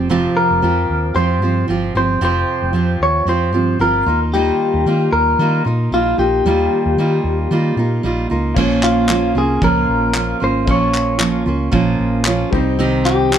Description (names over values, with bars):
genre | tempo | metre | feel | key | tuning
acoustic pop | 113 BPM | 4/4 | swing 55% on 16ths | unclear | A4 = 440 Hz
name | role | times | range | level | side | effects
fingerpicked steel-string acoustic guitar | accompaniment | 0.0-13.4 s | F2 to G4 | -18 LUFS | right 3 dB | none
hollow-body short-scale fingered electric bass | bass | 0.0-13.4 s | F1 to Eb3 | -20 LUFS | left 1 dB | none
clean electric guitar | melody | 0.4-13.4 s | F4 to Db5 | -17 LUFS | left 2 dB | plate reverb
warm concert grand piano | accompaniment | 8.5-13.4 s | G3 to C6 | -25 LUFS | left 6 dB | none
modern studio drum kit | drums | 8.6-13.4 s | crash cymbal, handclaps, kick drum | -21 LUFS | left 1 dB | none
room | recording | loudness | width
wet studio reverb, RT60 0.5 s | none | -14 LUFS | side -9 dB against mid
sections
0.0-8.6 A section; 8.6-13.4 B section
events
none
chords
0.0 Fsus2; 4.1 Ebadd9; 8.6 Bbm; 12.5 Cm